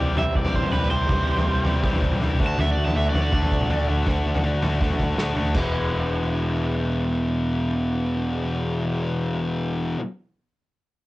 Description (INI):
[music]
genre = indie rock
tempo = 162 BPM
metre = 4/4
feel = straight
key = E minor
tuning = A4 = 440 Hz
[part]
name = overdriven semi-hollow guitar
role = melody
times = 0.0-3.9 s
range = B4 to A5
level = -28 LUFS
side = right 2 dB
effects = cassette tape, tape echo
[part]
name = thick fuzz guitar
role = riff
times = 0.0-10.0 s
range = E2 to G4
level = -24 LUFS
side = left 1 dB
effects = distortion, cassette tape
[part]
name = fuzz fingered electric bass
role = bass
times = 0.0-9.9 s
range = E1 to D3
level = -28 LUFS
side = equal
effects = overdrive
[part]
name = vintage drum kit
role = drums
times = 0.2-5.6 s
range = crash cymbal, kick drum, snare drum, toms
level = -24 LUFS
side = equal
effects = cassette tape
[sound]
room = light reverb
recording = home recording on cassette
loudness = -21 LUFS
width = side -18 dB against mid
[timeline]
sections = 0.0-5.5 A section; 5.5-8.5 B section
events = overdriven electric guitar solo 0.0-5.5; drum fill 5.2-5.5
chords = 0.0 C; 2.4 D; 5.5 E